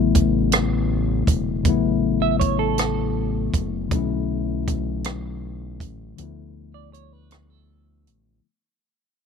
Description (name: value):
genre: slow six-eight R&B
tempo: 53 BPM (dotted quarters)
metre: 6/8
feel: straight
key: A major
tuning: A4 = 437 Hz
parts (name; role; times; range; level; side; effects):
- mellow tine electric piano; accompaniment; 0.0-8.5 s; C#3 to E4; -23 LUFS; left 12 dB; none
- round analog bass; bass; 0.0-8.4 s; E1 to D2; -26 LUFS; right 2 dB; none
- compact cocktail drum kit; drums; 0.1-8.2 s; hi-hat, kick drum, rim click; -22 LUFS; right 2 dB; none
- semi-hollow electric guitar; second line; 2.2-8.4 s; A4 to E5; -25 LUFS; right 14 dB; harmonic tremolo, slapback echo
room: light reverb, small room ambience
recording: 1960s-style stereo with parts hard left and right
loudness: -20 LUFS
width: side -6 dB against mid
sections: 0.0-8.4 A section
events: fade-out 0.0-8.4; break 6.2-8.4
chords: 0.0 A6; 3.9 Bm11; 6.2 Dm6